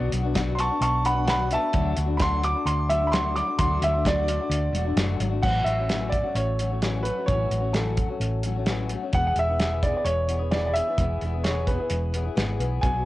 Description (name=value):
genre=folk rock and heartland rock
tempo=130 BPM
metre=4/4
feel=straight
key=A major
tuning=A4 = 440 Hz
part: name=clear baby grand piano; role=melody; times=0.0-13.1 s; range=A4 to D6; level=-26 LUFS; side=right 1 dB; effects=cassette tape, analog delay
part: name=picked steel-string acoustic guitar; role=accompaniment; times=0.0-13.1 s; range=A2 to G#4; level=-30 LUFS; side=left 6 dB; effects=cassette tape
part: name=hollow-body short-scale fingered electric bass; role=bass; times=0.0-13.0 s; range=E1 to D2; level=-26 LUFS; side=equal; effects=none
part: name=cloth-damped thuddy drum kit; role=drums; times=0.1-12.9 s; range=crash cymbal, hi-hat, kick drum, snare drum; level=-28 LUFS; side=right 1 dB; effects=cassette tape
room=light reverb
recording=home recording on cassette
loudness=-22 LUFS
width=side -16 dB against mid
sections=0.0-5.4 A section; 5.4-13.1 B section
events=grand piano solo 0.0-5.4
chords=0.0 Bm; 1.7 D; 5.4 A6; 9.1 E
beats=0.36 0.82 1.28 | 1.74 2.20 2.66 3.12 | 3.58 4.05 4.51 4.97 | 5.43 5.89 6.35 6.82 | 7.28 7.74 8.20 8.66 | 9.12 9.59 10.05 10.51 | 10.97 11.44 11.90 12.36 | 12.82